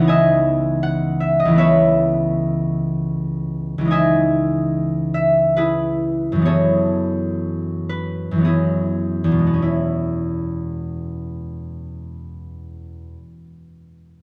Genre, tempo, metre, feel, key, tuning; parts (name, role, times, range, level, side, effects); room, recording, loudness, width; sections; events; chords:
classical, solo harp piece; 48-81 BPM; 3/4; rubato; E major; A4 = 440 Hz
concert harp; solo; 0.0-13.2 s; C#2 to G#5; -20 LUFS; equal
moderate stone room reverb, RT60 1.3 s; dark, warm production; -19 LUFS; mono
0.0-9.6 A section; 9.6-13.0 B section
slowing down 2.7-9.6
0.0 C#m9; 1.6 Aadd9/C#; 3.9 C#madd9; 6.4 F#m11; 9.6 E6